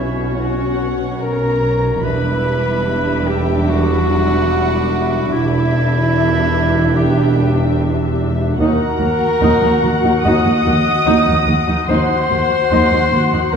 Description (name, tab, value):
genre	cinematic, suspense film score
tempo	73 BPM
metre	4/4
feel	straight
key	unclear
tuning	A4 = 440 Hz
part	muted symphonic violin section	melody	0.0-13.6 s	C#5 to F#5	-25 LUFS	left 2 dB	none
part	bright clarinet	second line	0.0-13.6 s	E4 to D#5	-19 LUFS	equal	none
part	muted studio violin section	second line	0.0-13.6 s	E5 to D#6	-24 LUFS	left 1 dB	none
part	muted studio viola section	accompaniment	0.0-13.6 s	G3 to G4	-20 LUFS	equal	none
part	muted symphonic cello section	bass	0.0-13.6 s	D#2 to B2	-20 LUFS	right 1 dB	none
part	muted symphonic double bass section	bass	0.0-13.6 s	E1 to D#2	-20 LUFS	right 1 dB	none
part	muted symphonic violin section	texture	2.1-8.1 s	E5 to D6	-32 LUFS	left 3 dB	none
room	wet recital hall reverb, RT60 1.4 s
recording	heard from further back in the room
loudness	-13 LUFS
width	side -6 dB against mid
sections	0.0-13.6 A section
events	none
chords	0.0 Bsus2; 2.0 Em7; 8.6 D#m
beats	0.39 1.22 | 2.04 2.87 3.69 4.51 | 5.33 6.14 6.96 7.77 | 8.59 9.41 10.25 11.07 | 11.89 12.71 13.53